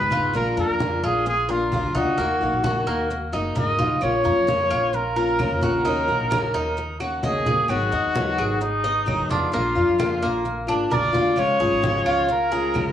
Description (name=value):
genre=latin, Cuban son and guajira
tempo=130 BPM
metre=4/4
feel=straight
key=Eb minor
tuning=A4 = 440 Hz
part: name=warm trumpet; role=melody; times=0.0-12.9 s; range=Eb4 to Eb5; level=-23 LUFS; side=equal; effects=cassette tape
part: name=picked steel-string acoustic guitar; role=accompaniment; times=0.0-12.9 s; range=Db3 to Ab4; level=-25 LUFS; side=left 3 dB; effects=none
part: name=Cuban tres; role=arpeggios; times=0.0-12.9 s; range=Bb3 to Eb5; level=-28 LUFS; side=right 2 dB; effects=none
part: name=upright bass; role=bass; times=0.0-12.9 s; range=Gb1 to F2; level=-30 LUFS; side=equal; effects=none
part: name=congas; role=percussion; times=0.1-12.9 s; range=none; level=-30 LUFS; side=equal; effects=none
part: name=claves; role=percussion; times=4.0-12.9 s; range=none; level=-36 LUFS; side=right 3 dB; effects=none
room=moderate spring reverb, RT60 1.7 s, small room ambience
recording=home recording on cassette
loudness=-19 LUFS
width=side -10 dB against mid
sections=0.0-12.9 A section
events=none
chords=0.3 Bb; 2.2 Ebm; 4.0 Bbm; 5.9 Ebm7; 7.7 Abm7; 9.5 Bb; 11.4 Db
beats=| 0.34 0.80 1.26 1.72 | 2.18 2.64 3.10 3.56 | 4.02 4.48 4.94 5.40 | 5.86 6.32 6.78 7.24 | 7.70 8.16 8.62 9.08 | 9.54 9.99 10.46 10.91 | 11.38 11.84 12.29 12.76